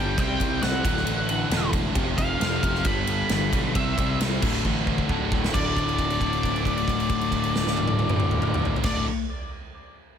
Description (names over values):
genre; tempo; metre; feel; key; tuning
quiet-loud alternative rock; 134 BPM; 4/4; straight; unclear; A4 = 441 Hz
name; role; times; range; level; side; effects
octave-fuzz lead guitar; melody; 0.0-9.0 s; D5 to B5; -29 LUFS; equal; distortion, analog delay
crunchy overdriven guitar; riff; 0.0-9.1 s; D2 to C4; -32 LUFS; equal; none
scooped high-gain guitar; riff; 0.0-9.1 s; D2 to C4; -31 LUFS; right 11 dB; distortion
thick fuzz guitar; riff; 0.0-9.1 s; D2 to C4; -30 LUFS; left 13 dB; distortion
fuzz picked electric bass; bass; 0.0-9.0 s; D1 to C2; -29 LUFS; equal; overdrive
big rock drum kit; drums; 0.2-8.9 s; crash cymbal, kick drum, ride cymbal, snare drum, toms; -26 LUFS; equal; none
room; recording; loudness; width
light reverb; none; -22 LUFS; side -8 dB against mid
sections
0.0-5.5 A section; 5.5-9.1 B section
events
drum fill 4.6-5.5; held note 5.5-8.8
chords
0.2 C5; 0.8 D; 2.0 F5; 2.8 G; 3.7 C; 4.4 D5